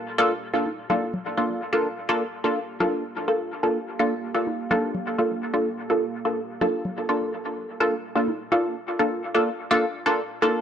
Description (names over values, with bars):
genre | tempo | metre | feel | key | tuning
dub techno | 126 BPM | 4/4 | straight | G minor | A4 = 440 Hz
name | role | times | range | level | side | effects
deep dark ambient pad | sustained chords | 0.0-10.6 s | Bb3 to G5 | -38 LUFS | right 2 dB | chorus, built-in reverb
filtered dub chord stab | stabs | 0.2-10.6 s | Bb3 to A4 | -23 LUFS | equal | chorus, phaser, dub echo
congas | percussion | 0.7-10.5 s | none | -34 LUFS | left 1 dB | dub echo
room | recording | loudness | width
light reverb | dry, gritty hardware recording | -22 LUFS | side -8 dB against mid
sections
0.5-8.2 A section; 8.2-10.6 B section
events
none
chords
0.0 Gm7